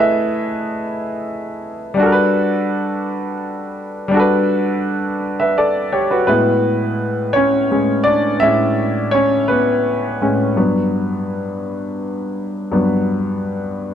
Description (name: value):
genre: R&B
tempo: 56 BPM (dotted quarters)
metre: 6/8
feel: straight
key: A major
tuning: A4 = 440 Hz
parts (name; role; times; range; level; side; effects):
- clear grand piano; solo; 0.0-13.9 s; G2 to E5; -15 LUFS; equal; none
room: moderate echo chamber reverb, RT60 1.7 s, studio ambience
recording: dark, warm production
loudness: -15 LUFS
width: side -9 dB against mid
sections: 0.0-6.3 A section; 6.3-13.9 B section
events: grand piano solo 6.3-13.9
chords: 0.0 Amaj9; 2.0 Gmaj9; 6.3 Amaj9; 10.6 Gmaj7